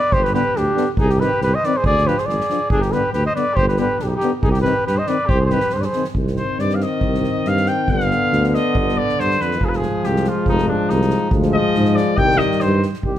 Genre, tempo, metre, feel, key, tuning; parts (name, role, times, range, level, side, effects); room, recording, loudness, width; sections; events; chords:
balkan folk, Balkan brass band; 139 BPM; 2/4; swing 53% on 16ths; C harmonic minor; A4 = 440 Hz
mellow cornet; melody; 0.0-6.0, 13.1-13.2 s; G4 to Eb5; -19 LUFS; equal
warm trumpet; second line; 0.0-12.8 s; D4 to G5; -23 LUFS; left 2 dB
mellow tuba; bass; 0.1-13.2 s; F1 to Ab2; -21 LUFS; equal
soft-mallet drum kit; percussion; 0.1-13.2 s; kick drum, snare drum; -24 LUFS; right 1 dB
brilliant trombone; accompaniment; 0.3-13.1 s; D3 to F3; -26 LUFS; right 6 dB
mellow euphonium; accompaniment; 0.3-13.1 s; G3 to D4; -24 LUFS; left 6 dB
light reverb; close, detailed microphones; -16 LUFS; side -12 dB against mid
0.0-6.2 A section; 6.2-13.0 B section
trumpet solo 6.2-13.0
0.0 G; 1.0 Cm; 1.8 Ddim; 2.7 G; 4.4 Cm; 7.9 G; 9.6 Fm; 11.3 Ddim; 12.2 Cm